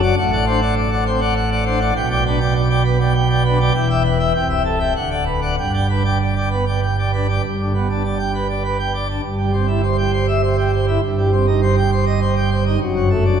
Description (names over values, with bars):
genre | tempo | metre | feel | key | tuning
classical, organ toccata | 100 BPM | 3/4 | straight | G major | A4 = 440 Hz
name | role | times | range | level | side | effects
pipe organ, plenum | solo | 0.0-13.4 s | C1 to G5 | -16 LUFS | right 1 dB | none
room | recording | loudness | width
wet church reverb, RT60 2.5 s | minimal, uncompressed stereo recording | -16 LUFS | side -8 dB against mid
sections
0.0-7.4 A section; 7.4-13.4 B section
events
none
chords
0.2 D7/A; 2.0 G/B; 3.7 Em; 4.3 Am7/C; 5.0 D6; 5.6 G; 9.2 C/G; 11.0 Cm/G; 12.8 D/F#